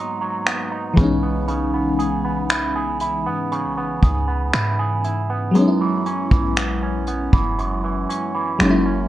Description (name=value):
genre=contemporary R&B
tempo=59 BPM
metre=4/4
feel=straight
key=unclear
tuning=A4 = 440 Hz
part: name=FM electric piano with soft pad layer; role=accompaniment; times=0.0-9.1 s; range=E3 to E4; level=-22 LUFS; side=left 1 dB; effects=chorus, tremolo, plate reverb
part: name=electric guitar with an envelope filter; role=arpeggios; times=0.0-9.1 s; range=F#2 to G#4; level=-24 LUFS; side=right 3 dB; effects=none
part: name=vintage brush drum kit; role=drums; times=0.5-8.8 s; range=finger snaps, hi-hat, kick drum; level=-20 LUFS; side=equal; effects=vintage 12-bit sampler grit
part: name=clean 808-style bass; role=bass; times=1.0-9.1 s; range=F#1 to G#2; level=-25 LUFS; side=equal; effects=none
room=moderate studio reverb, RT60 0.6 s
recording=none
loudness=-18 LUFS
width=side -14 dB against mid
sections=0.0-9.1 A section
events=none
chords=0.0 G#m7; 1.0 C#m7; 5.6 F#7sus4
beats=0.47 | 1.48 2.50 3.52 4.54 | 5.55 6.57 7.59 8.60